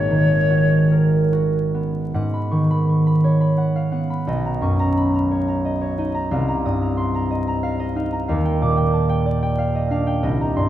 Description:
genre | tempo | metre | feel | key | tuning
classical, impressionist duo for flute and harp | 72-94 BPM | 3/4 | rubato | G# dorian | A4 = 440 Hz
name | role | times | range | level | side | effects
silver concert flute | melody | 0.0-1.3 s | C#5 | -22 LUFS | left 6 dB | none
concert harp | accompaniment | 0.0-10.7 s | G#1 to Eb6 | -18 LUFS | right 1 dB | none
room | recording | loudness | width
moderate concert hall reverb, RT60 2.2 s | dark, warm production, vinyl crackle | -17 LUFS | side -12 dB against mid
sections
0.0-2.1 A section; 2.1-10.7 A section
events
none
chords
0.0 G#m11; 4.3 Bmaj9; 6.3 Cm7; 8.3 D#maj9

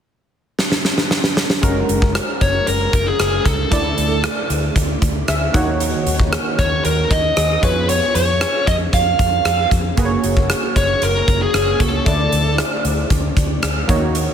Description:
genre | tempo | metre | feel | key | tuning
1980s-style pop | 115 BPM | 4/4 | straight | unclear | A4 = 440 Hz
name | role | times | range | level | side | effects
huge arena drum kit | drums | 0.6-14.3 s | hi-hat, kick drum, rim click, snare drum | -18 LUFS | equal | gated reverb
warm analog keys | accompaniment | 1.6-14.3 s | D3 to F#5 | -22 LUFS | right 2 dB | chorus
vintage muted fingered electric bass | bass | 1.6-14.3 s | F#1 to E#2 | -21 LUFS | equal | none
bluesy overdriven lead guitar | melody | 2.4-12.5 s | G#4 to E#5 | -19 LUFS | equal | distortion, ping-pong delay
room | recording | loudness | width
small room reverb | none | -15 LUFS | side -8 dB against mid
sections
0.0-1.6 A section; 1.6-14.3 B section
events
drum fill 0.6-1.6; synth keys fill 5.0-5.8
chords
0.0 N.C.; 1.6 F#add9; 3.7 Dsus2; 5.5 D#m7; 7.6 C#7/E#; 10.0 F#add9; 12.1 Dsus2

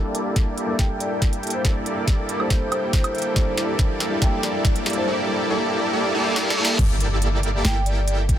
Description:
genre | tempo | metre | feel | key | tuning
future bass | 140 BPM | 4/4 | half-time | G dorian | A4 = 440 Hz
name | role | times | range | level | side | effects
tine electric piano | accompaniment | 0.0-6.8 s | G3 to A4 | -29 LUFS | left 1 dB | sidechain pumping, ping-pong delay
supersaw chords | riff | 0.0-8.4 s | Bb3 to G5 | -24 LUFS | equal | sidechain pumping, low-pass filter, ping-pong delay
riser, reverse cymbal and impact | sound effects | 2.3-8.4 s | none | -31 LUFS | right 2 dB | none
trap drum kit | drums | 0.1-8.4 s | crash cymbal, hi-hat, snare drum, woodblock | -28 LUFS | right 1 dB | overdrive, high-pass filter on snare, high-pass filter on hats, high-pass filter on perc, high-pass filter on cymbals, high-pass filter on room
electronic kick drum | drums | 0.4-8.4 s | none | -20 LUFS | equal | none
vibraphone with soft mallets | melody | 0.8-5.1, 7.6-8.0 s | C5 to G5 | -30 LUFS | equal | sidechain pumping, low-pass filter, dub echo
warm 808-style bass | bass | 6.8-8.4 s | G1 | -22 LUFS | equal | sidechain pumping
room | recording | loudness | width
light reverb | none | -19 LUFS | side -11 dB against mid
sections
0.0-6.8 A section; 6.8-8.4 B section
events
build-up 0.0-6.8; drum fill 0.0-5.1, 6.4-6.8; filter sweep on supersaw synth 0.0-6.8; reverse cymbal 6.1-6.8; drop 6.8-8.4; impact 6.8-8.4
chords
0.0 Gm69

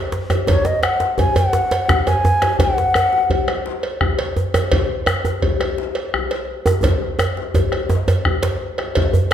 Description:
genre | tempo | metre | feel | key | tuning
west african traditional, West African drum ensemble | 113 BPM (dotted quarters) | 12/8 | straight | unclear | A4 = 440 Hz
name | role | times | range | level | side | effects
bombo | percussion | 0.1-9.1 s | none | -22 LUFS | equal | none
djembe | percussion | 0.1-9.3 s | none | -20 LUFS | right 2 dB | none
cowbell | percussion | 0.3-9.3 s | none | -24 LUFS | right 2 dB | none
djembe | percussion | 0.3-9.1 s | none | -25 LUFS | left 5 dB | none
bansuri | melody | 0.5-3.6 s | C#5 to G#5 | -18 LUFS | left 1 dB | none
room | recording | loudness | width
wet recital hall reverb, RT60 1.4 s | none | -16 LUFS | side -10 dB against mid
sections
0.0-9.0 A section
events
drum fill 6.8-9.0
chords
none

